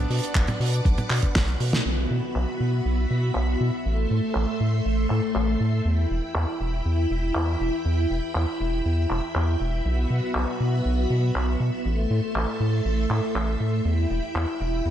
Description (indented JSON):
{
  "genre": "italo disco",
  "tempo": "120 BPM",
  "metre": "4/4",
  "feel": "straight",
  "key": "E minor",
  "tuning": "A4 = 440 Hz",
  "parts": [
    { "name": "bright electric grand piano", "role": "melody", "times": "0.0-1.3 s", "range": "B3 to D4", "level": "-35 LUFS", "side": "right 1 dB", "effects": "ping-pong delay" },
    { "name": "string machine, full ensemble", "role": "sustained chords", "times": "0.0-14.9 s", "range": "A3 to D6", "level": "-28 LUFS", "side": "equal", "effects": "ensemble chorus" },
    { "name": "round analog bass", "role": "bass", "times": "0.0-14.9 s", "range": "E1 to B2", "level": "-24 LUFS", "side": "equal", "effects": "tube saturation" },
    { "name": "damped 70s drum kit", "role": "drums", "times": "0.1-14.9 s", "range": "crash cymbal, handclaps, hi-hat, snare drum, toms", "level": "-30 LUFS", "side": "right 1 dB", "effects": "low-pass filter on hats, small room ambience, low-pass filter on toms, low-pass filter on cymbals, low-pass filter on snare, low-pass filter on room" },
    { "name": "electronic kick drum", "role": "drums", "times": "0.4-1.5 s", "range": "none", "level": "-22 LUFS", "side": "equal", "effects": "small room ambience" }
  ],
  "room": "light reverb, studio reverb",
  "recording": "dark, warm production",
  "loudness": "-22 LUFS",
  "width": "side -10 dB against mid",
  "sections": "0.0-1.9 A section; 1.9-14.9 B section",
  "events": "drum fill 1.4-1.9; band accent 1.7",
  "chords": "0.0 Bm; 1.9 Bsus4; 3.9 Am; 5.9 Em; 9.9 Bsus4; 11.9 Am; 13.9 Em"
}